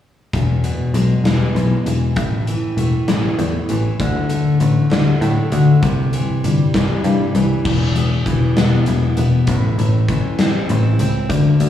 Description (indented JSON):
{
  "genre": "quiet-loud alternative rock",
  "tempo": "66 BPM (dotted quarters)",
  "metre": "6/8",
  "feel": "straight",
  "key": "unclear",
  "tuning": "A4 = 440 Hz",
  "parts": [
    { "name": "picked steel-string acoustic guitar", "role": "arpeggios", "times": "0.3-11.7 s", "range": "E2 to E4", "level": "-19 LUFS", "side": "equal", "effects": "slapback echo" },
    { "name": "picked electric bass", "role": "bass", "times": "0.3-11.7 s", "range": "E1 to A2", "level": "-17 LUFS", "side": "left 2 dB", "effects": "none" },
    { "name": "big rock drum kit", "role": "drums", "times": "0.3-11.7 s", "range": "crash cymbal, hi-hat, kick drum, snare drum", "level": "-22 LUFS", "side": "left 1 dB", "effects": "none" }
  ],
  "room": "light reverb",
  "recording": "live gig heard through the venue's PA, recital hall reverb, small room ambience",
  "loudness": "-14 LUFS",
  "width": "side -10 dB against mid",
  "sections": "0.3-7.7 A section; 7.7-11.7 B section",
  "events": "none",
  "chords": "0.3 E; 2.2 A5; 4.0 D5; 5.8 C; 7.7 E5; 9.5 Am"
}